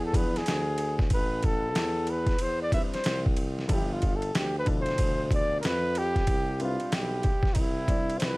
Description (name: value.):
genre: hip hop, jazz-hop.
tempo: 93 BPM.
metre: 4/4.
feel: swing 64% on 16ths.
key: C major.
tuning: A4 = 443 Hz.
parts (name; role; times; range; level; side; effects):
breathy flugelhorn; melody; 0.0-8.4 s; Eb4 to E5; -30 LUFS; equal; none.
clear tuba; bass; 0.0-8.4 s; G1 to F2; -32 LUFS; equal; none.
dark upright piano; accompaniment; 0.1-8.1 s; B2 to E5; -36 LUFS; left 1 dB; none.
boom bap sampler-style drum kit; drums; 0.1-8.4 s; hi-hat, kick drum, ride cymbal, snare drum; -28 LUFS; equal; overdrive.
room: small room ambience.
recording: vinyl crackle.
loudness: -25 LUFS.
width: side -23 dB against mid.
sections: 0.0-6.3 A section; 6.3-8.4 B section.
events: flugelhorn solo 0.0-6.3.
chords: 0.0 E7b9; 1.1 Amadd9; 3.7 G13; 6.3 Cmaj9.